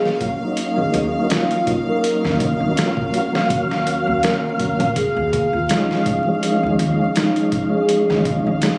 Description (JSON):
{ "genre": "trip hop", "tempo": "82 BPM", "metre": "4/4", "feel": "swing 55% on 16ths", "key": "Eb minor", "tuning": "A4 = 438 Hz", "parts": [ { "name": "pure breathy sine lead", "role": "melody", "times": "0.0-8.2 s", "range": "Eb4 to Bb4", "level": "-26 LUFS", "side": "equal", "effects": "phaser, analog chorus, tape echo" }, { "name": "mellow tonewheel organ", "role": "accompaniment", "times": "0.0-8.8 s", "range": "F3 to F5", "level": "-23 LUFS", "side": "equal", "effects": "chorus vibrato, fast rotary speaker, tremolo, tape echo" }, { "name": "deep dark ambient pad", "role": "sustained chords", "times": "0.4-8.8 s", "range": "F5", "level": "-29 LUFS", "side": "equal", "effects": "chorus, built-in reverb" }, { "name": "bowed-like drone", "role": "texture", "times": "0.0-8.8 s", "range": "F5", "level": "-31 LUFS", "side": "equal", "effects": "built-in reverb" }, { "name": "boom bap sampler-style drum kit", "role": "drums", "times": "0.1-8.8 s", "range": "hi-hat, kick drum, snare drum", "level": "-26 LUFS", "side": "equal", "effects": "none" }, { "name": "upright bass", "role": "bass", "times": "0.8-8.6 s", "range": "Bb1 to Eb2", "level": "-27 LUFS", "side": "equal", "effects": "none" } ], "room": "light reverb", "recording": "recorded on a phone in the room, club reverb, vinyl crackle, compression", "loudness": "-19 LUFS", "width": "mono", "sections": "0.0-8.8 A section", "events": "none", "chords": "0.0 Ebm9; 5.0 Dbadd9/Eb" }